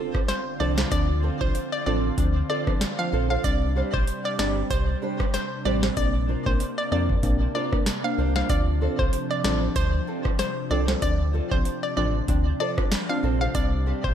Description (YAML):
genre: dancehall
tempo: 95 BPM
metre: 4/4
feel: swing 56% on 16ths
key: D minor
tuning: A4 = 440 Hz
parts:
  - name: hollow square pluck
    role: melody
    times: 0.0-14.1 s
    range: C5 to F5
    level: -29 LUFS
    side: equal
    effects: chorus, diffuse ambient delay
  - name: lush unison pad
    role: sustained chords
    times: 0.0-14.1 s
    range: C3 to F4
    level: -32 LUFS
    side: equal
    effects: chorus, phaser, sidechain pumping
  - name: fingerpicked old ladder-braced acoustic guitar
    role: arpeggios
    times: 0.0-14.1 s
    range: G3 to C5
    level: -33 LUFS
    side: right 6 dB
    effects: wide subtle chorus
  - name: impact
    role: sound effects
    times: 0.0-0.9 s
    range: none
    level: -51 LUFS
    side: left 1 dB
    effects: none
  - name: booming analog drum machine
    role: drums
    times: 0.1-14.1 s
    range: hi-hat, kick drum, rim click, snare drum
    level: -26 LUFS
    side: equal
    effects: overdrive
  - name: deep mellow chord stab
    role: accompaniment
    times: 0.6-14.1 s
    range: F3 to D4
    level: -31 LUFS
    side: left 2 dB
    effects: chorus
  - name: sub bass with octave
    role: bass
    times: 0.6-14.1 s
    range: G1 to F2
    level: -25 LUFS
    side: equal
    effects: none
room: moderate plate reverb, RT60 1.6 s, digital ambience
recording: dreamy mix soaked in reverb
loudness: -22 LUFS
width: side -9 dB against mid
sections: 0.0-14.1 A section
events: impact 0.0-0.9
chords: 0.0 Dm7; 3.4 Csus2; 6.0 Bbadd9; 8.5 Dm7; 13.5 Csus2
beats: 0.28 | 0.92 1.55 2.18 2.81 | 3.44 4.07 4.71 5.34 | 5.97 6.60 7.23 7.86 | 8.49 9.13 9.76 10.39 | 11.02 11.65 12.28 12.92 | 13.55